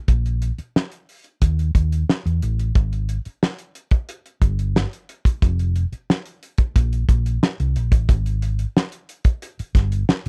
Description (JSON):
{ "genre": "lush 1970s-style soul", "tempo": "90 BPM", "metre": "4/4", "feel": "straight", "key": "unclear", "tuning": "A4 = 440 Hz", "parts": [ { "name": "hollow-body short-scale fingered electric bass", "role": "bass", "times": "0.1-10.3 s", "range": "F1 to E2", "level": "-23 LUFS", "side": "equal", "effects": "none" }, { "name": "cloth-damped thuddy drum kit", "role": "drums", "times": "0.1-10.3 s", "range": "hi-hat, kick drum, snare drum", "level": "-19 LUFS", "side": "equal", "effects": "none" } ], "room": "little or no reverb", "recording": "dry, close 1970s-style studio recording", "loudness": "-21 LUFS", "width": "mono", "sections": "0.0-8.1 A section; 8.1-10.3 B section", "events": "none", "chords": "none", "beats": "| 0.08 0.75 1.42 2.09 | 2.76 3.42 4.09 4.76 | 5.43 6.09 6.76 7.42 | 8.09 8.76 9.42 10.09" }